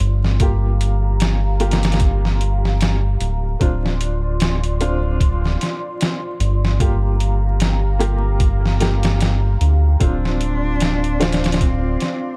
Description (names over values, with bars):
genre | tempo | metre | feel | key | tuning
trip hop | 75 BPM | 4/4 | swing 57% on 16ths | D minor | A4 = 440 Hz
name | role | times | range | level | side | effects
warm upright piano | accompaniment | 0.0-12.4 s | Bb3 to G4 | -30 LUFS | equal | tremolo, tape echo
dark analog pad | sustained chords | 0.0-12.4 s | F4 to C6 | -32 LUFS | equal | chorus
round analog bass | bass | 0.0-12.0 s | D1 to D2 | -20 LUFS | equal | none
trip hop sampler-style drum kit | drums | 0.0-12.2 s | hi-hat, kick drum, snare drum | -22 LUFS | equal | none
dark cello | melody | 10.0-12.4 s | C4 to D4 | -27 LUFS | equal | tape echo
mellow electric guitar | arpeggios | 10.0-12.4 s | C4 to C5 | -33 LUFS | equal | tape echo
room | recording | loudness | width
little or no reverb | vinyl crackle | -18 LUFS | mono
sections
0.0-12.4 A section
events
none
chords
0.4 Gm7; 3.6 Dm7; 6.8 Gm7; 10.0 Dm7